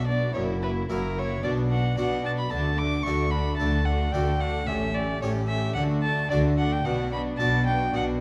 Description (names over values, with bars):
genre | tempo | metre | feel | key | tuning
classical, baroque-style concerto movement with solo episodes | 111 BPM | 4/4 | straight | unclear | A4 = 439 Hz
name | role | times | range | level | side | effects
rich violin | melody | 0.0-8.0 s | A#4 to D6 | -32 LUFS | equal | none
warm chamber violin section | melody | 0.0-8.2 s | F#4 to G4 | -44 LUFS | equal | none
rich chamber violin section | second line | 0.0-8.2 s | C#4 to E4 | -35 LUFS | equal | none
dark chamber viola section | accompaniment | 0.0-8.2 s | A3 to B3 | -37 LUFS | equal | none
harpsichord | accompaniment | 0.0-8.2 s | F#2 to G4 | -34 LUFS | equal | none
rich chamber double bass section | bass | 0.0-8.2 s | F#1 to D2 | -32 LUFS | equal | none
warm chamber cello section | bass | 0.0-8.2 s | F#2 to D3 | -33 LUFS | equal | none
room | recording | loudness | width
moderate recital hall reverb, RT60 1.7 s | dark, warm production, vinyl crackle | -26 LUFS | mono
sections
0.0-8.2 A section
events
none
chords
0.4 F#7; 1.4 Bm; 2.5 D; 4.7 A7; 5.8 D; 6.9 Bm